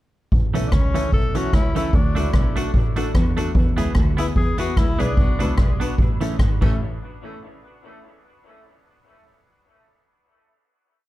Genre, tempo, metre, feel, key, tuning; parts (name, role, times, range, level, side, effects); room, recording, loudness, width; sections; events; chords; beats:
ska; 148 BPM; 4/4; swing 56% on 8ths; A major; A4 = 440 Hz
clear double bass; bass; 0.3-6.8 s; G#1 to E2; -23 LUFS; equal
street-band drum kit; drums; 0.3-6.7 s; crash cymbal, hi-hat, kick drum, rim click; -20 LUFS; equal
semi-hollow electric guitar; accompaniment; 0.5-6.7 s; E3 to G#4; -30 LUFS; right 5 dB; dub echo
honky-tonk upright piano; stabs; 0.5-6.8 s; A3 to B4; -31 LUFS; left 3 dB; dub echo
breathy tenor saxophone; melody; 0.7-6.8 s; A3 to A4; -29 LUFS; left 3 dB; dub echo
little or no reverb; dark, warm production; -17 LUFS; side -16 dB against mid
0.3-6.8 A section; 6.8-8.4 final hit
0.3 A; 1.9 D; 3.6 E; 5.2 Bm; 6.0 A; 6.8 N.C.
| 0.32 0.72 1.12 1.53 | 1.93 2.34 2.74 3.15 | 3.55 3.96 4.36 4.77 | 5.17 5.58 5.99 6.39